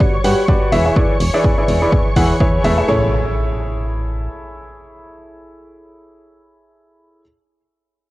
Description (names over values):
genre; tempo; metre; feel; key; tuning
piano house; 125 BPM; 4/4; swing 56% on 16ths; A major; A4 = 440 Hz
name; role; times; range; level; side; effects
analog string pad; sustained chords; 0.0-2.9 s; C#5 to C#6; -26 LUFS; equal; ensemble chorus, sidechain pumping, cassette tape
clear grand piano; riff; 0.0-7.2 s; E3 to F#5; -18 LUFS; equal; sidechain pumping, low-pass filter, cassette tape, analog delay
solid FM bass; bass; 0.0-4.3 s; E1 to G2; -20 LUFS; equal; sidechain pumping
electronic kick drum; drums; 0.0-2.5 s; none; -16 LUFS; equal; cassette tape
electronic hi-hat; drums; 0.2-2.8 s; none; -32 LUFS; equal; cassette tape
impact; sound effects; 2.9-7.3 s; none; -27 LUFS; equal; none
room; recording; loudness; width
little or no reverb; home recording on cassette, lossy compression artefacts; -13 LUFS; side -18 dB against mid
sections
0.0-2.9 A section; 2.9-6.7 B section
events
none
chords
0.0 Gmaj7; 0.7 E7; 2.9 Amaj7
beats
0.00 0.48 | 0.96 1.44 1.92 2.40 | 2.88 3.36 3.84 4.32 | 4.80 5.28 5.76 6.24